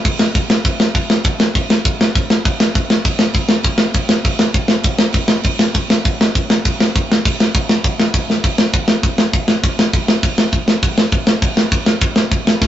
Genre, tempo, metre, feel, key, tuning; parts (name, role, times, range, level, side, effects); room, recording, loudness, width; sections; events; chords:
punk; 201 BPM; 4/4; straight
tight metal drum kit; drums; 0.1-12.7 s; crash cymbal, kick drum, snare drum; -13 LUFS; equal
light reverb; rough rehearsal-room recording, warm saturation, nothing above 7.8 kHz; -13 LUFS; side -11 dB against mid
0.0-8.4 A section; 8.4-12.7 B section
drum fill 8.3